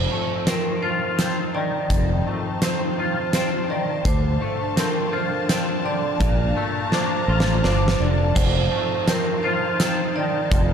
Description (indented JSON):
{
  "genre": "post-rock",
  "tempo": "84 BPM",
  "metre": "3/4",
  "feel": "straight",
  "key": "unclear",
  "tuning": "A4 = 440 Hz",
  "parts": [
    { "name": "warm studio string section", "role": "sustained chords", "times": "0.0-10.7 s", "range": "D4 to Bb5", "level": "-31 LUFS", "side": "left 1 dB", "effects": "none" },
    { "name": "twangy electric guitar", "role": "arpeggios", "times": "0.0-10.7 s", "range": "F2 to F4", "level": "-26 LUFS", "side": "left 4 dB", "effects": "ensemble chorus, slapback echo" },
    { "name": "vibraphone with hard mallets", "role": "arpeggios", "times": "0.0-10.7 s", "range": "Bb4 to D5", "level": "-27 LUFS", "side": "right 6 dB", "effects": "slapback echo" },
    { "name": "growling fingered electric bass", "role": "bass", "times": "0.0-10.7 s", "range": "F1 to D2", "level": "-21 LUFS", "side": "equal", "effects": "overdrive" },
    { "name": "huge arena drum kit", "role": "drums", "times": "0.5-10.7 s", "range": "crash cymbal, hi-hat, kick drum, snare drum", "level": "-24 LUFS", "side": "equal", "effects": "none" }
  ],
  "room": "light reverb, small room ambience",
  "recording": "dark, warm production",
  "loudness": "-19 LUFS",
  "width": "side -7 dB against mid",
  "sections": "0.0-10.7 A section",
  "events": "drum fill 6.9-8.4",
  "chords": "0.0 F7; 4.1 Dm7; 6.2 Bbmaj7; 8.4 F7"
}